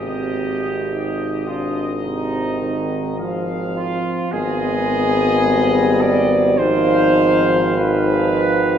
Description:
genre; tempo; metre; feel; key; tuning
classical, hymn-like piece for brass band; 52 BPM; 4/4; rubato; unclear; A4 = 440 Hz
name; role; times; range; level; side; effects
clear trumpet section; melody; 0.0-8.8 s; Eb5 to F5; -29 LUFS; left 3 dB; none
warm flugelhorn; second line; 0.0-8.8 s; Eb4 to D5; -20 LUFS; right 2 dB; none
warm euphonium; accompaniment; 0.0-8.8 s; Cb4 to Eb4; -23 LUFS; left 1 dB; none
warm trombone; accompaniment; 0.0-8.8 s; C3 to Ab3; -27 LUFS; right 1 dB; none
clear tuba; bass; 0.0-8.8 s; Ab1; -21 LUFS; equal; none
room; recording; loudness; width
wet church reverb, RT60 3.1 s; heard from further back in the room; -16 LUFS; side -8 dB against mid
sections
0.0-8.8 A section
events
none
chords
0.0 Ab6; 4.3 Abm; 6.6 Fm7b5/Ab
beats
0.92 2.05 3.20 | 4.33 5.45 6.59 7.77

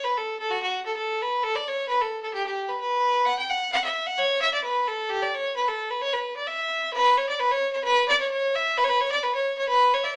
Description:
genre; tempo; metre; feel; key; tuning
celtic folk; 130 BPM; 2/4; swing 53% on 8ths; unclear; A4 = 440 Hz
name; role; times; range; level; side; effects
clear fiddle; solo; 0.0-10.1 s; F#4 to G5; -25 LUFS; equal; none
room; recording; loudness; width
wet studio reverb, RT60 0.6 s; none; -25 LUFS; mono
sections
0.0-6.9 A section; 6.9-10.2 B section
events
none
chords
none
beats
0.04 | 0.50 0.96 | 1.42 1.88 | 2.34 2.80 | 3.26 3.72 | 4.18 4.64 | 5.10 5.56 | 6.02 6.48 | 6.94 7.40 | 7.86 8.32 | 8.78 9.24 | 9.70

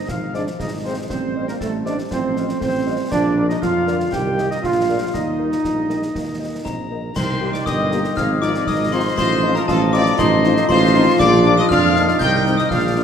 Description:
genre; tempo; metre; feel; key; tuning
military-style march for wind band; 119 BPM; 2/4; straight; unclear; A4 = 440 Hz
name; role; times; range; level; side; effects
mellow euphonium; second line; 0.0-13.0 s; D3 to F4; -24 LUFS; right 1 dB; none
warm woodwind section; second line; 0.0-13.0 s; Eb4 to G5; -27 LUFS; left 1 dB; none
warm trombone section; sustained chords; 0.0-13.0 s; Eb3 to G4; -23 LUFS; right 2 dB; none
dark tuba; bass; 0.1-13.0 s; G1 to F2; -22 LUFS; right 2 dB; none
concert snare drum, concert bass drum and clash cymbals; drums; 0.1-13.0 s; none; -28 LUFS; left 1 dB; none
dark trumpet section; melody; 0.3-13.0 s; A4 to G5; -24 LUFS; equal; none
mellow French horn section; accompaniment; 0.3-13.0 s; G3 to Eb5; -27 LUFS; left 5 dB; none
glockenspiel with hard plastic mallets; second line; 6.6-13.0 s; A5 to G6; -24 LUFS; left 7 dB; none
mellow piccolo; second line; 6.7-13.0 s; A5 to G6; -26 LUFS; left 5 dB; none
room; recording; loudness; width
wet concert hall reverb, RT60 2.4 s; none; -16 LUFS; side -8 dB against mid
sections
0.0-7.2 A section; 7.2-13.0 A section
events
none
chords
0.1 Fm7/Ab; 1.1 F7/A; 3.1 Bb; 4.1 Cm; 4.6 Bb; 5.1 Eb; 7.2 Cm7; 8.2 Fm7/Ab; 9.2 F7/A; 11.2 Bb; 12.2 Cm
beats
| 0.09 0.59 | 1.10 1.60 | 2.11 2.61 | 3.12 3.62 | 4.13 4.63 | 5.14 5.64 | 6.15 6.66 | 7.16 7.67 | 8.17 8.67 | 9.18 9.68 | 10.19 10.69 | 11.20 11.70 | 12.21 12.71

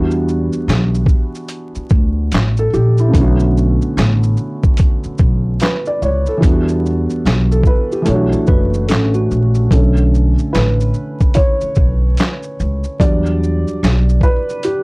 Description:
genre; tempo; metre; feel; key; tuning
lo-fi hip hop; 73 BPM; 4/4; swing 63% on 16ths; B minor; A4 = 438 Hz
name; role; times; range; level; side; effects
felt-muted upright piano; accompaniment; 0.0-14.8 s; C#3 to D5; -18 LUFS; equal; cassette tape
upright bass; bass; 0.0-14.2 s; F#1 to E2; -15 LUFS; equal; none
boom bap sampler-style drum kit; drums; 0.1-14.8 s; handclaps, hi-hat, kick drum, shaker, snare drum; -14 LUFS; equal; vintage 12-bit sampler grit
tine electric piano; second line; 8.3-9.7 s; A3 to C#5; -22 LUFS; equal; medium stereo tremolo, analog delay
room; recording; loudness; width
little or no reverb; dry, gritty hardware recording, transformer saturation, vinyl crackle; -12 LUFS; side -28 dB against mid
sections
0.0-9.7 A section; 9.7-14.8 B section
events
felt piano solo 9.7-14.8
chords
0.0 Em7; 3.1 Bm9; 6.4 Em7; 8.1 Bm11; 9.7 Bm9; 13.0 Em7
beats
0.67 1.49 2.31 | 3.13 3.96 4.78 5.60 | 6.42 7.24 8.06 8.89 | 9.71 10.53 11.35 12.18 | 13.00 13.82 14.64

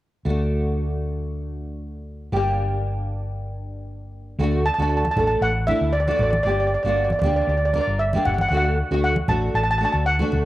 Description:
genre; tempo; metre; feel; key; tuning
calypso; 116 BPM; 4/4; swing 54% on 16ths; D major; A4 = 439 Hz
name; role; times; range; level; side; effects
nylon-string guitar; accompaniment; 0.2-10.4 s; A3 to Bb4; -26 LUFS; equal; double-tracked left and right, cassette tape
hollow-body short-scale fingered electric bass; bass; 0.3-10.5 s; G1 to D2; -24 LUFS; equal; transformer saturation
steel pan; melody; 4.7-10.5 s; D5 to A5; -22 LUFS; right 1 dB; cassette tape, analog delay
congas; percussion; 5.0-10.4 s; none; -28 LUFS; right 1 dB; none
room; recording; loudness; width
moderate spring reverb, RT60 2.5 s; home recording on cassette; -19 LUFS; side -15 dB against mid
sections
0.3-4.4 A section; 4.4-10.5 B section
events
none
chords
0.3 D; 2.3 Gm; 4.4 D; 6.5 Gm; 8.5 D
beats
| 0.25 0.77 1.29 1.80 | 2.32 2.84 3.35 3.87 | 4.39 4.91 5.42 5.94 | 6.45 6.97 7.48 8.00 | 8.51 9.03 9.54 10.05

